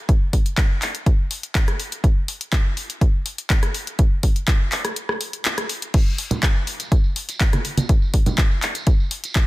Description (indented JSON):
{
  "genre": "house",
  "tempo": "123 BPM",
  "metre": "4/4",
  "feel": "straight",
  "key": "none",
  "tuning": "none",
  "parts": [
    { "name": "electronic kick drum", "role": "drums", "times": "0.1-9.5 s", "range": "none", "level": "-17 LUFS", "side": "equal", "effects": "none" },
    { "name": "house drum kit", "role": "drums", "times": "0.1-9.5 s", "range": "crash cymbal, handclaps, hi-hat, rim click", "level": "-24 LUFS", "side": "left 1 dB", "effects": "sidechain pumping on hats, sidechain pumping on cymbals" },
    { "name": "tambourine and congas", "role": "percussion", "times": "6.0-9.5 s", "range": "none", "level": "-26 LUFS", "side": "right 2 dB", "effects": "sidechain pumping on perc, low-pass filter on perc" }
  ],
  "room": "digital ambience",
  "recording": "dense, heavily limited modern master",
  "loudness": "-18 LUFS",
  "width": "side -19 dB against mid",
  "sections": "0.0-9.5 A section",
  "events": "break 5.0-5.9",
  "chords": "none"
}